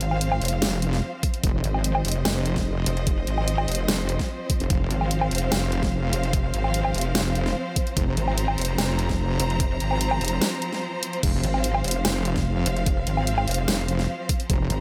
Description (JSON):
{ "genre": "heavy wobble dubstep", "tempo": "147 BPM", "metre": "4/4", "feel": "half-time", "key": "F minor", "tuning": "A4 = 440 Hz", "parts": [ { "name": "rich studio string section", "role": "sustained chords", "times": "0.0-14.8 s", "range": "F3 to Bb5", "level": "-32 LUFS", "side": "equal", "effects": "sidechain pumping" }, { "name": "pulsing pluck wobble bass", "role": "bass", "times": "0.0-14.8 s", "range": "F1 to Ab1", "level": "-27 LUFS", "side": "equal", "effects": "chorus, overdrive" }, { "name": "dubstep drum kit", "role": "drums", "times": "0.0-14.8 s", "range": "crash cymbal, hi-hat, snare drum, woodblock", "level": "-29 LUFS", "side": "equal", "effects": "none" }, { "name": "wobble bass", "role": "bass", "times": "0.6-14.7 s", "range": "F1", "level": "-27 LUFS", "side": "equal", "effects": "chorus, overdrive" }, { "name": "electronic kick drum", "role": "drums", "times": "1.2-14.6 s", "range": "none", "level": "-27 LUFS", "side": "equal", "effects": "overdrive" } ], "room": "little or no reverb", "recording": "none", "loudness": "-24 LUFS", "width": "mono", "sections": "0.0-14.8 A section", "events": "break 10.4-11.2", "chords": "0.0 F5" }